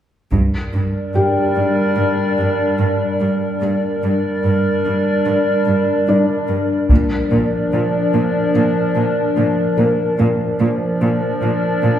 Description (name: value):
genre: cinematic, hybrid orchestral and electronic film score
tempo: 73 BPM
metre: 4/4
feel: straight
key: G minor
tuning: A4 = 440 Hz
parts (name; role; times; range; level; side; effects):
- warbly tape-like pad; sustained chords; 0.8-12.0 s; F3 to D5; -17 LUFS; left 1 dB; chorus, built-in reverb
- rich symphonic cello section; bass; 0.3-11.9 s; G2 to Bb2; -20 LUFS; right 2 dB; none
- taiko ensemble; drums; 0.3-1.9, 6.9-8.5 s; none; -17 LUFS; equal; none
- felt-muted upright piano; texture; 1.2-12.0 s; D4 to G5; -24 LUFS; left 2 dB; none
room: wet recital hall reverb, RT60 1.5 s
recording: recorded in a church or concert hall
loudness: -15 LUFS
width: side -10 dB against mid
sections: 0.3-12.0 A section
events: none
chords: 0.3 Gm; 6.9 Bb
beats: | 0.32 1.15 1.97 2.79 | 3.61 4.43 5.25 6.08 | 6.90 7.72 8.54 9.36 | 10.19 11.01 11.83